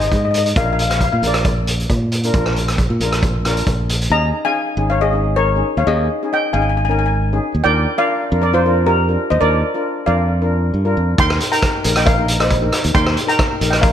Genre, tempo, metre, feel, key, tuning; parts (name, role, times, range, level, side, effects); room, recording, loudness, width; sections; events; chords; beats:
calypso; 136 BPM; 4/4; straight; A4 = 436 Hz
steel pan; melody; 0.0-13.9 s; F4 to C6; -18 LUFS; left 1 dB; slapback echo
steel pan; accompaniment; 0.0-13.8 s; Db4 to C5; -23 LUFS; left 2 dB; slapback echo
modern bright fingered electric bass; bass; 0.0-13.9 s; Ab1 to Bb2; -18 LUFS; equal
street-band drum kit; drums; 0.0-4.1, 11.2-13.9 s; hi-hat, kick drum, rim click; -18 LUFS; equal
moderate scoring stage reverb, RT60 1.5 s, small room reverb; big arena sound; -14 LUFS; side -9 dB against mid
0.0-4.1 A section; 4.1-13.9 B section
0.0 Ab; 0.6 Bb; 4.1 Dbsus2; 7.6 Bb/Eb; 11.2 Eb
0.11 | 0.56 1.00 1.45 1.89 | 2.34 2.78 3.22 3.67 | 4.11 4.55 5.00 5.44 | 5.88 6.32 6.76 7.21 | 7.65 8.09 8.53 8.97 | 9.41 9.86 10.30 10.74 | 11.18 11.62 12.07 12.51 | 12.95 13.39 13.83